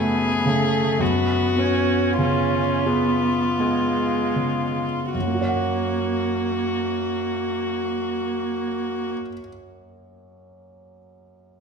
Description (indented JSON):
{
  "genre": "classical, slow romantic movement for piano quartet",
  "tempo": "37-60 BPM",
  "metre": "3/4",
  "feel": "rubato",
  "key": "unclear",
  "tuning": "A4 = 440 Hz",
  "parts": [
    { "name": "dark violin", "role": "melody", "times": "0.0-9.1 s", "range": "E#4 to G#4", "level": "-25 LUFS", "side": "left 4 dB", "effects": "none" },
    { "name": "clear concert grand piano", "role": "accompaniment", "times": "0.0-11.6 s", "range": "F#2 to F#5", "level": "-25 LUFS", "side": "equal", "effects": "none" },
    { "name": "rich viola", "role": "accompaniment", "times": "0.0-9.1 s", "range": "G#3 to C#4", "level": "-25 LUFS", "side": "right 4 dB", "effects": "none" }
  ],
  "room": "wet recital hall reverb, RT60 1.5 s",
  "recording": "minimal, uncompressed stereo recording",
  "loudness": "-20 LUFS",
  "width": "side -6 dB against mid",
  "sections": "0.0-5.1 A section; 5.1-9.5 B section",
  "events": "slowing down 0.0-5.1",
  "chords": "0.0 F#m; 1.0 C#7/F#; 5.1 F#"
}